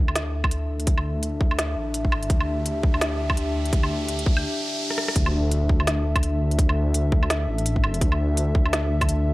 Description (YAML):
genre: half-time drum and bass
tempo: 168 BPM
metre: 4/4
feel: swing 59% on 16ths, half-time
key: unclear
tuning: A4 = 441 Hz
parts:
  - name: dark analog pad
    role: sustained chords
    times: 0.0-9.3 s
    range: D4 to E5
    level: -29 LUFS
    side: left 2 dB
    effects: chorus, sidechain pumping
  - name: dark detuned saw bass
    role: bass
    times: 0.0-9.3 s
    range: A1 to D2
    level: -24 LUFS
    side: equal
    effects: tube saturation
  - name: riser and impact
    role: sound effects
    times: 2.5-6.6 s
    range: none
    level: -33 LUFS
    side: right 1 dB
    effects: none
  - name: organic electronic drum kit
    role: drums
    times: 0.1-9.2 s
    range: hi-hat, rim click, snare drum, woodblock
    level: -27 LUFS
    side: right 1 dB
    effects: none
  - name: electronic kick drum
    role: drums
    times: 0.4-9.1 s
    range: none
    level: -21 LUFS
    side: equal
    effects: none
room: little or no reverb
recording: dry, gritty hardware recording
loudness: -20 LUFS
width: side -19 dB against mid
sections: 0.0-5.2 A section; 5.2-9.3 B section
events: build-up 0.0-5.2; riser 2.5-5.2; break 4.4-5.2; drum fill 4.9; drop 5.2-9.3; impact 5.2-6.6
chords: 0.0 Dsus2